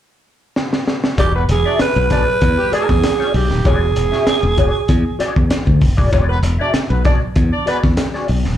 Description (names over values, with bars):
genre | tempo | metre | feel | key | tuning
funk | 97 BPM | 4/4 | straight | E mixolydian | A4 = 440 Hz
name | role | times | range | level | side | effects
crunchy breakbeat drum kit | drums | 0.6-8.5 s | hi-hat, kick drum, snare drum | -18 LUFS | equal | none
growling alto saxophone | melody | 1.2-5.5 s | G4 to B4 | -18 LUFS | right 4 dB | slapback echo
mellow electric guitar | accompaniment | 1.2-8.5 s | F#4 to E5 | -23 LUFS | left 4 dB | wah, slapback echo
modern bright fingered electric bass | bass | 1.2-8.6 s | D#1 to E2 | -16 LUFS | equal | none
warm horn section | second line | 1.3-7.8 s | G3 to D5 | -22 LUFS | equal | slapback echo
room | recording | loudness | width
light reverb | live gig heard through the venue's PA, club reverb | -13 LUFS | side -11 dB against mid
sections
0.0-1.2 A section; 1.2-8.6 B section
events
drum fill 0.6-1.2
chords
0.0 N.C.; 1.2 E9